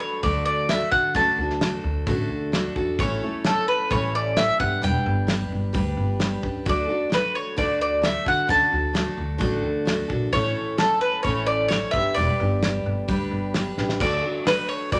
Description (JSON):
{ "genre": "folk rock and heartland rock", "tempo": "131 BPM", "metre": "4/4", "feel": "straight", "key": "D major", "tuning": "A4 = 440 Hz", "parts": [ { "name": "bowl-back mandolin", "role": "melody", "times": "0.0-15.0 s", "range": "A4 to A5", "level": "-25 LUFS", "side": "equal", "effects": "none" }, { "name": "picked steel-string acoustic guitar", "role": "accompaniment", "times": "0.0-15.0 s", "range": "A2 to B4", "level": "-30 LUFS", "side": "equal", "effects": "none" }, { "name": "upright bass", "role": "bass", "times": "0.2-15.0 s", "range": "E1 to D3", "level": "-30 LUFS", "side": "equal", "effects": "none" }, { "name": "damped 70s drum kit", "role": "drums", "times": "0.2-15.0 s", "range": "crash cymbal, hi-hat, kick drum, snare drum", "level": "-30 LUFS", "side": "equal", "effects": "none" } ], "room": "moderate large studio reverb, RT60 1.2 s", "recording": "none", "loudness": "-23 LUFS", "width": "mono", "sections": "0.0-14.0 A section; 14.0-15.0 A section", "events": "drum fill 13.8", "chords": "0.0 D; 3.0 A; 4.6 G; 6.7 D; 10.3 A; 11.9 G; 14.0 D" }